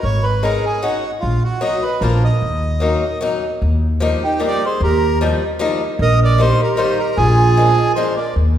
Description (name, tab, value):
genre	musette waltz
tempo	151 BPM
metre	3/4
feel	straight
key	Eb minor, Eb major from 3.6 s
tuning	A4 = 440 Hz
part	bandoneon	melody	0.0-8.3 s	F4 to Eb5	-20 LUFS	right 1 dB	none
part	upright bass	bass	0.0-8.6 s	Ab1 to Eb2	-17 LUFS	equal	none
part	picked swing-style acoustic guitar	accompaniment	0.4-8.2 s	Eb3 to Ab4	-21 LUFS	left 3 dB	none
part	warm clarinet	second line	4.2-8.4 s	Eb4 to Bb4	-21 LUFS	right 5 dB	none
room	wet scoring stage reverb, RT60 1.6 s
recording	heard from further back in the room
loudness	-14 LUFS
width	side -10 dB against mid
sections	0.0-3.6 A section; 3.6-8.6 B section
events	none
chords	0.0 Absus4; 1.2 Ebm/Bb; 2.0 Bb; 2.4 Ebm7; 3.6 Ebadd9; 6.0 Eb/Bb; 7.2 Bb7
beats	| 0.04 0.43 0.83 | 1.23 1.63 2.02 | 2.42 2.82 3.22 | 3.62 4.02 4.42 | 4.81 5.21 5.60 | 5.99 6.38 6.78 | 7.17 7.57 7.96 | 8.36